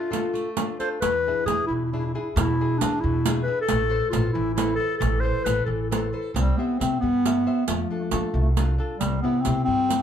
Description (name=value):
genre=italian folk, Italian serenade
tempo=90 BPM (dotted quarters)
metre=6/8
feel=straight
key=A harmonic minor, C major from 6.3 s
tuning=A4 = 441 Hz
part: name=dark clarinet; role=melody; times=0.0-10.0 s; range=G3 to C5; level=-24 LUFS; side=left 1 dB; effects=plate reverb
part: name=flamenco guitar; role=accompaniment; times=0.0-10.0 s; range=B2 to E5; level=-29 LUFS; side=left 2 dB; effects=none
part: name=riq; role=percussion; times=0.1-10.0 s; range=none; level=-28 LUFS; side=right 4 dB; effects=none
part: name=upright bass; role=bass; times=1.0-10.0 s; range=A1 to F3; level=-26 LUFS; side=equal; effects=none
room=wet small room reverb, RT60 0.5 s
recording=heard from further back in the room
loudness=-21 LUFS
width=side -9 dB against mid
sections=0.0-6.3 A section; 6.3-10.0 B section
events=none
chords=0.0 Dm; 1.0 E7; 3.7 Amadd9; 6.3 C; 7.7 F6; 9.0 C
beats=0.34 | 1.02 1.70 | 2.37 3.03 | 3.69 4.34 | 5.00 5.67 | 6.35 7.02 | 7.68 8.34 | 9.00 9.67